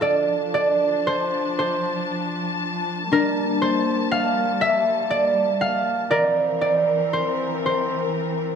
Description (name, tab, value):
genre	celtic folk, Celtic slow air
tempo	39 BPM (dotted quarters)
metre	6/8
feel	rubato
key	unclear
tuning	A4 = 440 Hz
part	concert harp	accompaniment	0.0-8.6 s	D4 to F5	-20 LUFS	right 1 dB	none
part	muted studio string section	sustained chords	0.0-8.6 s	E3 to A5	-26 LUFS	left 2 dB	none
room	moderate recital hall reverb, RT60 1.4 s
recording	close, detailed microphones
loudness	-19 LUFS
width	side -7 dB against mid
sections	0.0-8.6 A section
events	harp solo 0.0-8.6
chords	0.0 F6; 3.1 Gmadd9; 6.1 C7